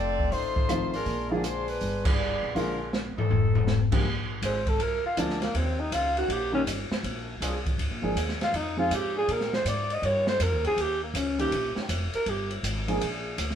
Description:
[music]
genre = jazz, big band swing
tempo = 161 BPM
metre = 4/4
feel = swing 65% on 8ths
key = Bb mixolydian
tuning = A4 = 440 Hz
[part]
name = warm saxophone section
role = melody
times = 0.0-3.9 s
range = F3 to D5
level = -30 LUFS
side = left 2 dB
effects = none
[part]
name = upright bass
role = bass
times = 0.0-13.6 s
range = F1 to Bb2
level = -32 LUFS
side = equal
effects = none
[part]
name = open jazz drum kit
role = drums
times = 0.2-13.6 s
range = crash cymbal, hi-hat, kick drum, ride cymbal, rim click, snare drum, toms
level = -29 LUFS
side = left 1 dB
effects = none
[part]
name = warm baby grand piano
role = accompaniment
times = 0.7-8.9, 11.4-13.0 s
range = D3 to Ab4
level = -31 LUFS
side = right 1 dB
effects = none
[part]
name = clear trombone section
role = sustained chords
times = 4.4-13.4 s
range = Eb3 to Ab4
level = -38 LUFS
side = right 1 dB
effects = none
[part]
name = growling alto saxophone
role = melody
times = 4.5-12.5 s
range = Bb3 to Eb5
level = -27 LUFS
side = equal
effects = none
[sound]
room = moderate stone room reverb, RT60 1.1 s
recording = band playing live in one room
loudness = -25 LUFS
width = side -9 dB against mid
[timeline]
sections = 0.0-4.0 A section; 4.0-13.6 B section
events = band accent 2.0; drum fill 2.9-3.7; alto saxophone solo 4.0-13.6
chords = 0.0 F7; 1.1 Bb7; 1.8 G7b9; 2.6 Bb7; 3.3 F7; 4.0 Bb7; 5.5 Eb7; 7.0 Bb7; 8.5 Fm7; 9.3 Bb7; 10.0 Eb7; 13.0 Bb7

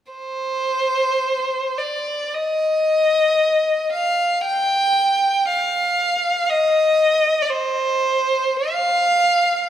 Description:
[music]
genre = classical, free, expressive piece for unaccompanied violin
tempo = 45-63 BPM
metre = 4/4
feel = rubato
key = C minor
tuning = A4 = 442 Hz
[part]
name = rich violin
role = solo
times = 0.1-9.7 s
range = C5 to G5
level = -17 LUFS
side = equal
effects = none
[sound]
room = moderate concert hall reverb, RT60 2.2 s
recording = none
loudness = -17 LUFS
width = side -10 dB against mid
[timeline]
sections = 0.1-9.7 A section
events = none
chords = none

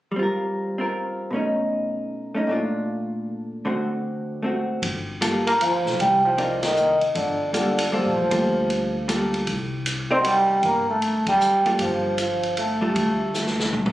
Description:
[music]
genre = jazz, small-group swing and bop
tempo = 155 BPM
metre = 3/4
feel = swing 65% on 8ths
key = G minor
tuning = A4 = 440 Hz
[part]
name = vintage hollow-body jazz guitar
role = accompaniment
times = 0.1-13.3 s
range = Bb2 to D5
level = -24 LUFS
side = equal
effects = none
[part]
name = upright bass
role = bass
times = 4.8-13.9 s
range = G1 to D2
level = -31 LUFS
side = equal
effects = none
[part]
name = vintage drum kit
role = drums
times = 4.8-13.9 s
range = hi-hat, kick drum, ride cymbal, snare drum, toms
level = -29 LUFS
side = equal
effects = none
[part]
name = vibraphone with soft mallets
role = melody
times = 5.5-13.7 s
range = D5 to C6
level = -22 LUFS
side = right 1 dB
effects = none
[part]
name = clear trombone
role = second line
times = 5.5-13.7 s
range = D3 to C4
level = -25 LUFS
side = equal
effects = none
[sound]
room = moderate large studio reverb, RT60 1.1 s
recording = recorded on a phone in the room, club reverb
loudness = -20 LUFS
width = side -15 dB against mid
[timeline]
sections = 0.1-4.8 A section; 4.8-13.9 B section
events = band accent 6.6, 11.2; drum fill 13.3-13.9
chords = 0.1 Gm7; 1.3 B9; 2.5 Bbmaj7; 3.7 D7; 4.8 Gm9; 6.0 Cm9; 7.1 Gm9; 9.5 Cm9; 10.6 Gm9

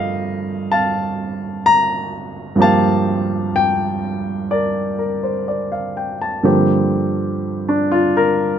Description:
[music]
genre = jazz ballad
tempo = 63 BPM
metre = 4/4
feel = swing 66% on 8ths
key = G minor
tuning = A4 = 440 Hz
[part]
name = warm grand piano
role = solo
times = 0.0-8.6 s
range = G2 to Bb5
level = -16 LUFS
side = equal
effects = none
[sound]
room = little or no reverb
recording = close, detailed microphones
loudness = -16 LUFS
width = side -8 dB against mid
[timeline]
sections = 0.0-6.4 A section; 6.4-8.6 B section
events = none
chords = 0.0 Gm11; 6.4 Gm7

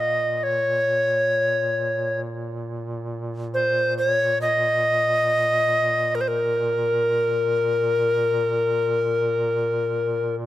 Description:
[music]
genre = caucasian folk, Caucasian lament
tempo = free time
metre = none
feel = none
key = Bb minor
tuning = A4 = 440 Hz
[part]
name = bright tenor recorder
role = melody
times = 0.0-10.4 s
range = Bb4 to Eb5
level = -20 LUFS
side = left 1 dB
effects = none
[part]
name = warm duduk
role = drone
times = 0.0-10.5 s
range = Bb2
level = -30 LUFS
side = right 1 dB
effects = none
[sound]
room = light reverb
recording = close, detailed microphones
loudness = -20 LUFS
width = side -14 dB against mid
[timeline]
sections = 0.0-10.5 A section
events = none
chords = none

